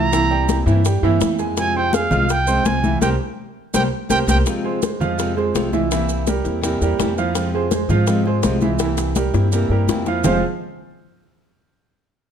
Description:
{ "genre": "latin, Cuban son and guajira", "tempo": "166 BPM", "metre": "4/4", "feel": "straight", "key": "F harmonic minor", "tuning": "A4 = 440 Hz", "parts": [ { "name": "breathy trumpet", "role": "melody", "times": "0.0-4.4 s", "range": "F5 to Bb5", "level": "-21 LUFS", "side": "right 3 dB", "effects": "none" }, { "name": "fingerpicked steel-string acoustic guitar", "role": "accompaniment", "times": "0.0-10.4 s", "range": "F2 to F4", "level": "-24 LUFS", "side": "left 2 dB", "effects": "none" }, { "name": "clear concert grand piano", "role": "arpeggios", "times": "0.0-10.4 s", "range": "E3 to F6", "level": "-22 LUFS", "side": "right 5 dB", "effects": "none" }, { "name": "upright bass", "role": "bass", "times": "0.0-10.4 s", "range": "F1 to Ab2", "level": "-21 LUFS", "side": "left 1 dB", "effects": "none" }, { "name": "bongos", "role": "percussion", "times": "0.1-10.3 s", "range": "none", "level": "-28 LUFS", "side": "left 9 dB", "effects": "none" }, { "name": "congas", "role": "percussion", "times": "0.1-10.3 s", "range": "none", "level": "-25 LUFS", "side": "left 3 dB", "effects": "none" }, { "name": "maracas", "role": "percussion", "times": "0.1-10.3 s", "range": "none", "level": "-32 LUFS", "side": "right 7 dB", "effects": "none" } ], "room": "light reverb", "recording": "none", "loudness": "-16 LUFS", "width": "side -8 dB against mid", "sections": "0.0-4.5 A section; 4.5-10.2 B section; 10.2-11.7 C section", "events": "band accent 3.0-4.5; drum fill 3.7-4.5, 8.8-10.2", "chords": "0.1 C7; 1.6 Fm; 3.0 C5; 4.5 Fm; 5.9 C7; 7.4 Fm; 8.8 C7; 10.2 Fm" }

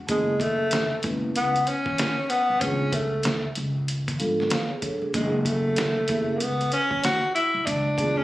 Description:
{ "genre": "hip hop, jazz-hop", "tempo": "95 BPM", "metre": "4/4", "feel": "swing 61% on 16ths", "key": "F# minor", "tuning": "A4 = 440 Hz", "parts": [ { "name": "upright bass", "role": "bass", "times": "0.0-8.2 s", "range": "E#1 to G#2", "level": "-29 LUFS", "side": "equal", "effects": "none" }, { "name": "breathy tenor saxophone", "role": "melody", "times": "0.1-8.2 s", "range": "G#3 to F#4", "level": "-24 LUFS", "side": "equal", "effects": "none" }, { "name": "vibraphone with soft mallets", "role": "accompaniment", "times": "0.1-8.2 s", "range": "E#3 to E#5", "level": "-28 LUFS", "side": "right 1 dB", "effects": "none" }, { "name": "trip hop sampler-style drum kit", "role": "drums", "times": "0.1-8.2 s", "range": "hi-hat, kick drum, snare drum", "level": "-29 LUFS", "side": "equal", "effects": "overdrive" } ], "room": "light reverb", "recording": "recorded on a phone in the room, studio reverb, compression", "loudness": "-22 LUFS", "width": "side -16 dB against mid", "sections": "0.1-8.2 A section", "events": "none", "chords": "0.1 F#m11; 2.6 C#7b9b13; 5.1 F#madd9; 7.7 C#7b9b13" }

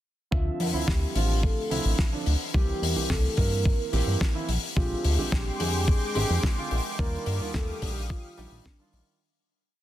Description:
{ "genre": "nu-disco, nu disco", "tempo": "108 BPM", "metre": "4/4", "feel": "straight", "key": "D minor", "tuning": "A4 = 438 Hz", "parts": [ { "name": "soft octave-layered synth lead", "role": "melody", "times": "0.3-9.1 s", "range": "D4 to Bb4", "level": "-35 LUFS", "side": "left 1 dB", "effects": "chorus, dub echo" }, { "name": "dark concert grand piano", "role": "accompaniment", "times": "0.3-9.2 s", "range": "D3 to E5", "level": "-33 LUFS", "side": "right 4 dB", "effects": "sidechain pumping, dub echo" }, { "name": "chorused synth bass", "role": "bass", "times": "0.3-9.0 s", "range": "Ab1 to G2", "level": "-27 LUFS", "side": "equal", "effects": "none" }, { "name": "electronic kick drum", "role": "drums", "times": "0.3-8.8 s", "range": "none", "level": "-26 LUFS", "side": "equal", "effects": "none" }, { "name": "damped 70s drum kit", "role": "drums", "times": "0.6-9.0 s", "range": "hi-hat, snare drum", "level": "-32 LUFS", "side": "left 3 dB", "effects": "none" }, { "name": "lush unison pad", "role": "sustained chords", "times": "5.1-9.2 s", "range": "Ab3 to Eb6", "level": "-36 LUFS", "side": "right 1 dB", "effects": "chorus, sidechain pumping" } ], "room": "little or no reverb", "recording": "dense, heavily limited modern master", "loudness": "-24 LUFS", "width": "side -13 dB against mid", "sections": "0.3-9.2 groove", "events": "fade-out 6.2-9.2", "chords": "0.3 Dm9; 2.5 C7; 4.5 Bb13; 7.0 Ebmaj9" }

